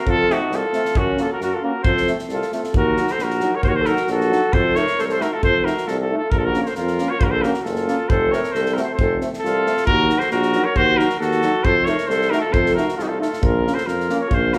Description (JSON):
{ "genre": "balkan folk, Balkan brass band", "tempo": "135 BPM", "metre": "2/4", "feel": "straight", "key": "F phrygian dominant", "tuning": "A4 = 441 Hz", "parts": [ { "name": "warm trumpet", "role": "melody", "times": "0.0-14.6 s", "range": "Gb4 to Db5", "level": "-24 LUFS", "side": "equal", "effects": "none" }, { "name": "warm flugelhorn", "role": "second line", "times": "0.0-14.6 s", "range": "Db4 to Bb4", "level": "-26 LUFS", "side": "equal", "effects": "none" }, { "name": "clear tuba", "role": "bass", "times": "0.1-14.6 s", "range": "F1 to Gb2", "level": "-26 LUFS", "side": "equal", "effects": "none" }, { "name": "natural country drum kit", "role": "percussion", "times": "0.1-14.6 s", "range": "kick drum, snare drum", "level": "-27 LUFS", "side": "equal", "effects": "none" }, { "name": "brilliant trombone", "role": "accompaniment", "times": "0.3-14.6 s", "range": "Gb3 to Bb3", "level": "-31 LUFS", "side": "equal", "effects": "none" }, { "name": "warm euphonium", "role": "accompaniment", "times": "0.3-14.6 s", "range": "C4 to Eb4", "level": "-31 LUFS", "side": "equal", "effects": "none" } ], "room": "wet large studio reverb, RT60 0.9 s", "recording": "band playing live in one room", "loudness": "-19 LUFS", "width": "mono", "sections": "0.0-2.8 A section; 2.8-9.9 B section; 9.9-14.6 B section", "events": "none", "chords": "0.0 F; 1.0 Gb; 1.9 F; 2.8 Ebm; 4.5 F7; 6.3 Bbm; 8.1 F; 9.9 Ebm; 11.7 F7; 13.4 Bbm" }